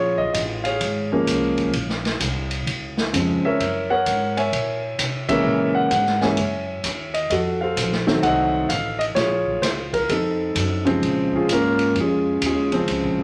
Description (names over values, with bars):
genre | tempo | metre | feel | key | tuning
jazz piano trio | 129 BPM | 4/4 | swing 66% on 8ths | Bb minor | A4 = 441 Hz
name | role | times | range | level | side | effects
warm concert grand piano | melody | 0.0-13.2 s | Db3 to Ab5 | -23 LUFS | equal | none
upright bass | bass | 0.0-13.2 s | Ab1 to C3 | -30 LUFS | equal | none
swinging big-band drum kit | drums | 0.2-13.0 s | hi-hat, kick drum, ride cymbal, snare drum | -30 LUFS | equal | none
room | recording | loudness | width
moderate large studio reverb, RT60 0.9 s | none | -22 LUFS | mono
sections
0.0-11.0 A section; 11.0-13.2 B section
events
band accent 5.2; grand piano solo 11.0-13.2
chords
0.0 Bbm9; 3.6 Gb7; 7.3 F7b9; 9.2 Bbm7; 10.1 F7b9; 11.0 Bbm9